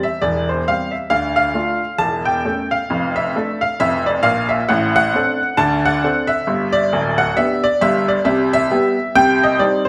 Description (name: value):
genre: jazz, stride piano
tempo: 134 BPM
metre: 4/4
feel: swing 60% on 8ths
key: G major from 4.7 s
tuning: A4 = 440 Hz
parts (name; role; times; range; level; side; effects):
- bright upright piano; solo; 0.0-9.9 s; D1 to A5; -17 LUFS; equal; none
room: wet large studio reverb, RT60 1.4 s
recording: band playing live in one room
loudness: -17 LUFS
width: mono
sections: 0.0-9.9 A section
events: none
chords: 0.0 C/E; 1.1 Dm; 2.0 A7/E; 2.9 Dm/F; 4.7 D7/A; 5.6 D7; 6.5 G; 8.2 Cmaj7; 9.1 Cm